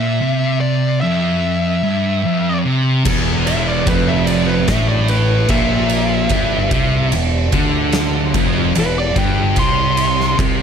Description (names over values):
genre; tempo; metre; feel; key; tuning
stoner and doom metal; 74 BPM; 4/4; straight; E phrygian from 3.1 s; A4 = 440 Hz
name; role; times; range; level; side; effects
fuzz lead guitar; melody; 0.0-10.4 s; B4 to C6; -21 LUFS; left 1 dB; distortion, slapback echo
thick fuzz guitar; riff; 0.0-10.6 s; E2 to D3; -20 LUFS; left 9 dB; distortion
thick fuzz guitar; riff; 0.0-10.6 s; E2 to D3; -20 LUFS; right 8 dB; distortion
high-gain distorted guitar; riff; 3.1-10.6 s; E2 to D3; -23 LUFS; right 1 dB; distortion
fuzz fingered electric bass; bass; 3.1-10.6 s; E1 to D2; -22 LUFS; equal; overdrive, tube saturation
oversized low-tuned drum kit; drums; 3.1-10.6 s; crash cymbal, kick drum, ride cymbal, snare drum; -20 LUFS; equal; none
room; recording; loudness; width
small room reverb; none; -14 LUFS; side -7 dB against mid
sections
0.0-3.1 A section; 3.1-10.6 B section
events
break 0.0-3.1; lead electric guitar solo 3.1-10.6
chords
0.0 Em; 9.6 C5